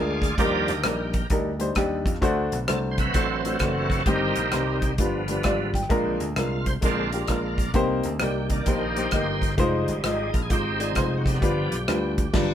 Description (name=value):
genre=uptempo gospel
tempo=130 BPM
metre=4/4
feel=swing 66% on 8ths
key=C minor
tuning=A4 = 440 Hz
part: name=warm baby grand piano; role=accompaniment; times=0.0-12.5 s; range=G2 to G5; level=-26 LUFS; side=left 2 dB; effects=none
part: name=bright tonewheel organ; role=sustained chords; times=0.0-12.5 s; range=D3 to Eb5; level=-28 LUFS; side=right 2 dB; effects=slow rotary speaker, chorus vibrato
part: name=vintage slap bass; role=bass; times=0.0-12.5 s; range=F1 to F2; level=-29 LUFS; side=equal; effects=none
part: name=natural country drum kit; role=drums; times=0.2-12.5 s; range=crash cymbal, hi-hat, kick drum, rim click, snare drum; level=-27 LUFS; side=equal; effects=none
room=light reverb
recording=band playing live in one room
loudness=-22 LUFS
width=side -10 dB against mid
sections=0.0-12.5 A section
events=tonewheel organ solo 0.0-12.5; grand piano fill 5.2-5.9; band accent 12.3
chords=0.4 Ebmaj7; 2.2 D7; 4.1 Cm/G; 5.0 G7; 5.9 Bb7; 7.7 Cm7; 9.6 Fm7; 11.4 G7